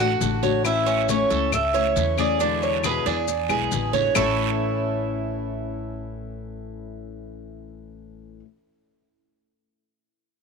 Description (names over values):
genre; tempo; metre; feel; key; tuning
latin, Cuban son and guajira; 137 BPM; 4/4; straight; A major; A4 = 440 Hz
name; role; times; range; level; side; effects
Cuban tres; melody; 0.0-8.4 s; G#4 to F#5; -26 LUFS; equal; none
picked steel-string acoustic guitar; accompaniment; 0.0-8.5 s; A2 to F#4; -29 LUFS; left 14 dB; none
Cuban tres; arpeggios; 0.0-8.4 s; A3 to C#5; -26 LUFS; right 11 dB; none
upright bass; bass; 0.0-8.4 s; A1 to E2; -30 LUFS; equal; none
congas; percussion; 0.2-4.3 s; none; -32 LUFS; left 10 dB; none
guiro; percussion; 0.2-4.3 s; none; -34 LUFS; right 16 dB; none
maracas; percussion; 0.2-4.3 s; none; -35 LUFS; left 17 dB; none
claves; percussion; 0.6-4.3 s; none; -30 LUFS; left 13 dB; none
room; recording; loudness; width
light reverb, studio ambience; 1960s-style stereo with parts hard left and right; -20 LUFS; side -5 dB against mid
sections
0.0-4.2 A section; 4.2-7.7 B section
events
none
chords
0.0 D; 0.7 A; 2.4 E7; 4.2 A